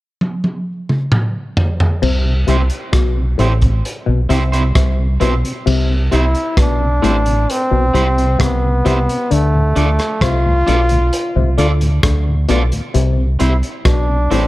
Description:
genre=roots reggae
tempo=66 BPM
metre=4/4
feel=straight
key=C major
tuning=A4 = 437 Hz
part: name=crunchy breakbeat drum kit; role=drums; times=0.2-14.5 s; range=crash cymbal, hi-hat, kick drum, rim click, toms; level=-19 LUFS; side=equal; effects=none
part: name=muted clav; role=riff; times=2.0-14.5 s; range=A2 to D3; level=-21 LUFS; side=left 5 dB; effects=phaser
part: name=deep dub fingered electric bass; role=bass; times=2.0-14.5 s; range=A1 to D2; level=-15 LUFS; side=equal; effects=none
part: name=mellow tonewheel organ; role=accompaniment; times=2.3-14.4 s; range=D2 to F4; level=-25 LUFS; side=left 1 dB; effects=chorus vibrato, slow rotary speaker
part: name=electric guitar at the edge of break-up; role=accompaniment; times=2.5-14.4 s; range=C4 to D5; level=-24 LUFS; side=right 3 dB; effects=tape echo
part: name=brilliant trombone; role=melody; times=6.1-14.5 s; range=A3 to F4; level=-18 LUFS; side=equal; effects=tape echo
room=light reverb, studio reverb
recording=dark, warm production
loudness=-13 LUFS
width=side -17 dB against mid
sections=0.0-2.0 A section; 2.0-5.7 B section; 5.7-14.5 C section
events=drum fill 0.2-2.0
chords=0.0 N.C.; 2.0 C; 9.3 Dm; 12.9 C

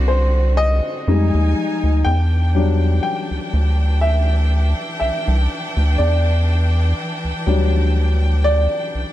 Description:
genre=R&B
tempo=61 BPM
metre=4/4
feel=swing 54% on 16ths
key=E minor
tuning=A4 = 440 Hz
part: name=warm baby grand piano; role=accompaniment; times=0.0-9.1 s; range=F#3 to G5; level=-22 LUFS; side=left 2 dB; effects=none
part: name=clear studio string section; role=sustained chords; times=0.0-9.1 s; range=D3 to Ab5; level=-26 LUFS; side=equal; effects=none
part: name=rubbery square bass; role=bass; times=0.0-9.1 s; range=C2 to F2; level=-16 LUFS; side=equal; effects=none
room=small room reverb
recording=dark, warm production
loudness=-15 LUFS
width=side -14 dB against mid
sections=0.0-9.1 A section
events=grand piano solo 0.0-9.1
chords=0.0 D7; 1.1 Fm7; 2.1 Em7

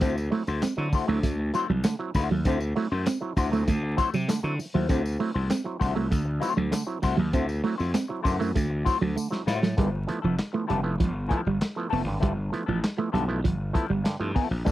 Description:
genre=funk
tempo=98 BPM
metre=4/4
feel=straight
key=unclear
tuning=A4 = 440 Hz
part: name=semi-hollow electric guitar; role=accompaniment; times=0.0-14.7 s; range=F3 to C5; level=-30 LUFS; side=left 7 dB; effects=wah
part: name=clean electric guitar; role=riff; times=0.0-14.7 s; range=F3 to C4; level=-27 LUFS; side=right 4 dB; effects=none
part: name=auto-wah clav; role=stabs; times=0.0-14.7 s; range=G2 to E4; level=-33 LUFS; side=right 3 dB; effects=overdrive
part: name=gritty slap bass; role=bass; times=0.0-14.7 s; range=F1 to D3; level=-28 LUFS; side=equal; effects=overdrive
part: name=crunchy breakbeat drum kit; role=drums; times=0.0-14.7 s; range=handclaps, hi-hat, kick drum, snare drum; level=-27 LUFS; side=equal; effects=none
part: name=tambourine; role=percussion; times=0.0-9.8, 14.7 s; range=none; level=-44 LUFS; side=left 4 dB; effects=none
room=little or no reverb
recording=dry, close 1970s-style studio recording, vinyl crackle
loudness=-24 LUFS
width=side -15 dB against mid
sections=0.0-9.8 A section; 9.8-14.7 B section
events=drum fill 9.2-9.8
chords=0.0 D9; 9.8 G13

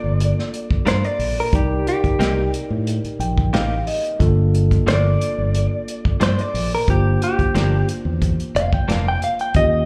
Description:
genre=straight-eighth soul blues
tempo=90 BPM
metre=4/4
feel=straight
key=G minor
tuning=A4 = 440 Hz
part: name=direct-recorded clean electric guitar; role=melody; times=0.0-9.9 s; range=G4 to G5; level=-25 LUFS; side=equal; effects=none
part: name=mellow tine electric piano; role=accompaniment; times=0.0-9.9 s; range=Bb3 to G5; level=-29 LUFS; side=equal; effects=none
part: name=fingered electric bass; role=bass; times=0.0-9.9 s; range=F1 to A2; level=-22 LUFS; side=equal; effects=none
part: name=warm soul drum kit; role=drums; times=0.2-9.7 s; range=hi-hat, kick drum, snare drum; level=-24 LUFS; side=equal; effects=none
part: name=direct-recorded clean electric guitar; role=stabs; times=0.9-9.1 s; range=G2 to Bb4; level=-31 LUFS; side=equal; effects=slapback echo
room=light reverb, studio reverb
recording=live gig heard through the venue's PA, club reverb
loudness=-19 LUFS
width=mono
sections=0.0-9.9 A section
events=tine electric piano fill 2.9-4.2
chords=0.0 Gm7; 1.5 Cm7; 4.2 Gm7

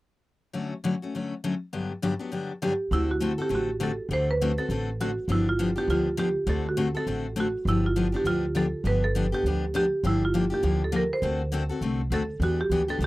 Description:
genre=acoustic string swing (jazz manouche)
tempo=202 BPM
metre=4/4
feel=swing 57% on 8ths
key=D mixolydian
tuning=A4 = 440 Hz
part: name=picked steel-string acoustic guitar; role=accompaniment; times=0.5-13.1 s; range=G2 to A4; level=-28 LUFS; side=left 3 dB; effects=none
part: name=marimba with medium hard mallets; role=melody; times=2.6-13.1 s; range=E4 to C5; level=-27 LUFS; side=right 2 dB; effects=none
part: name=upright bass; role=bass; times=2.9-13.1 s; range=G1 to E2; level=-28 LUFS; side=equal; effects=none
room=little or no reverb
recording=dry, close 1970s-style studio recording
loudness=-24 LUFS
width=side -18 dB against mid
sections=0.5-2.9 A section; 2.9-13.1 B section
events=none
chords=0.5 Dmaj7; 1.7 Gmaj7; 2.9 D7; 5.3 G7; 6.5 D7; 7.7 G7; 10.0 Gm7; 11.2 D7; 12.4 Em7

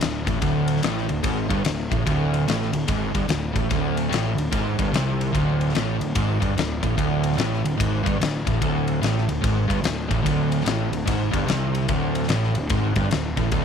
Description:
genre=blues rock power trio and southern rock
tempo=146 BPM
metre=4/4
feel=swing 64% on 8ths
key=unclear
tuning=A4 = 443 Hz
part: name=overdriven semi-hollow guitar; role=riff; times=0.0-13.6 s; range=D2 to C3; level=-23 LUFS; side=right 1 dB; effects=none
part: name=fuzz fingered electric bass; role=bass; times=0.0-13.6 s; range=D1 to C2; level=-28 LUFS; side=right 1 dB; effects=overdrive
part: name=huge arena drum kit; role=drums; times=0.0-13.6 s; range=kick drum, ride cymbal, snare drum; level=-26 LUFS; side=left 2 dB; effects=none
room=light reverb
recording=1960s-style stereo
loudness=-20 LUFS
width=side -7 dB against mid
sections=0.0-13.6 A section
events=none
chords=0.0 D5

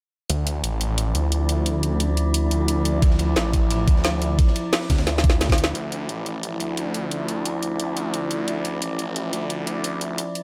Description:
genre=dark technical drum and bass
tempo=176 BPM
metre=4/4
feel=straight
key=D minor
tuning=A4 = 440 Hz
part: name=metallic inharmonic drone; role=sustained chords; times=0.7-10.4 s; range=F3 to D5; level=-30 LUFS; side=equal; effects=chorus, built-in reverb, sidechain pumping
part: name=snarling distorted saw bass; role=bass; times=0.3-10.2 s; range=A1 to D2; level=-27 LUFS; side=equal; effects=distortion, tube saturation, sidechain pumping, high-pass filter
part: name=drum and bass drum kit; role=drums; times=0.3-10.4 s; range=hi-hat, snare drum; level=-27 LUFS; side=equal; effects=overdrive, studio reverb
part: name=crunchy breakbeat drum kit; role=drums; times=3.0-5.7 s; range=hi-hat, ride cymbal, snare drum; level=-37 LUFS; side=equal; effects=high-pass filter on cymbals, studio reverb, high-pass filter on hats, high-pass filter on snare, high-pass filter on room
part: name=electronic kick drum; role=drums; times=3.0-5.6 s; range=none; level=-20 LUFS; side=equal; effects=overdrive, studio reverb
room=light reverb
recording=none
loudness=-23 LUFS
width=mono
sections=0.3-5.8 A section; 5.8-10.4 B section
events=drum fill 5.1-5.8; build-up 5.8-10.4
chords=0.3 Dmadd9

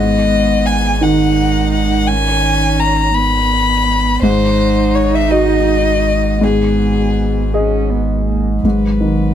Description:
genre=neoclassical piano and strings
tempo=56 BPM (dotted quarters)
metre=6/8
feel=rubato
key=G# minor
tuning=A4 = 440 Hz
part: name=warm violin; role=melody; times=0.0-9.3 s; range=G#4 to B5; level=-17 LUFS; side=left 5 dB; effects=none
part: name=dark cello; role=second line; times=0.0-9.3 s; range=F#3 to D#4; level=-21 LUFS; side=right 7 dB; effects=none
part: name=felt-muted upright piano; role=accompaniment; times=0.0-9.3 s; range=G#2 to D#5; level=-16 LUFS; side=equal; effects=none
part: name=punchy sub bass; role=bass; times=0.0-9.3 s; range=G#1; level=-18 LUFS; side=equal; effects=none
room=little or no reverb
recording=close, detailed microphones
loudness=-12 LUFS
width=side -10 dB against mid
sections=0.0-8.6 A section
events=none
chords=0.0 G#m7; 4.2 G#7; 6.4 G#m

